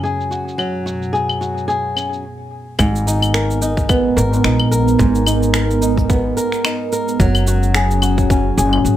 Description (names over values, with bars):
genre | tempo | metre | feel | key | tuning
folktronica | 109 BPM | 4/4 | swing 56% on 16ths | G# minor | A4 = 440 Hz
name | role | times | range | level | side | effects
warbly tape-like pad | sustained chords | 0.0-9.0 s | F#2 to A#4 | -21 LUFS | right 2 dB | chorus, built-in reverb
flamenco guitar | arpeggios | 0.0-9.0 s | G#2 to A#4 | -20 LUFS | left 1 dB | tape echo
electronic cabasa, claves and finger snaps | drums | 0.1-9.0 s | none | -22 LUFS | left 1 dB | low-pass filter on perc, low-pass filter on snare
upright bass | bass | 2.8-9.0 s | F#1 to A#1 | -17 LUFS | equal | none
electronic kick drum | drums | 2.8-8.4 s | none | -18 LUFS | equal | overdrive
room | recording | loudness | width
light reverb | none | -14 LUFS | side -12 dB against mid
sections
0.0-2.8 A section; 2.8-9.0 B section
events
filter sweep on nylon-string guitar 0.0-2.8; stop 2.2-2.8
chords
0.0 F#sus2; 2.8 G#madd9; 7.2 F#sus2